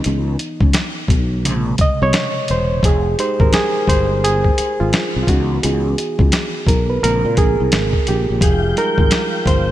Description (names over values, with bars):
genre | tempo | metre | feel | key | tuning
R&B, neo-soul | 86 BPM | 4/4 | swing 62% on 16ths | F minor | A4 = 437 Hz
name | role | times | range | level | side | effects
overdriven reed electric piano | accompaniment | 0.0-9.7 s | C3 to Eb5 | -19 LUFS | right 2 dB | none
dusty soul sampler-style drum kit | drums | 0.0-9.7 s | hi-hat, kick drum, snare drum | -17 LUFS | left 1 dB | none
sustaining fretless electric bass | bass | 0.1-9.7 s | E1 to Bb2 | -18 LUFS | left 1 dB | ensemble chorus
tonewheel organ | sustained chords | 8.4-9.7 s | F3 to G5 | -23 LUFS | left 3 dB | fast rotary speaker, chorus vibrato
room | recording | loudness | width
moderate lush hall reverb, RT60 2.8 s | bright 1980s-style digital production | -14 LUFS | side -13 dB against mid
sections
0.0-9.7 A section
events
reed electric piano solo 0.0-9.7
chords
0.0 Dbm9; 1.4 Bbm9; 2.8 Fm9; 5.3 Dbm9; 7.0 Bbm9; 8.4 Fm9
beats
| 0.04 0.74 1.44 2.13 | 2.83 3.53 4.23 4.92 | 5.62 6.32 7.02 7.71 | 8.41 9.11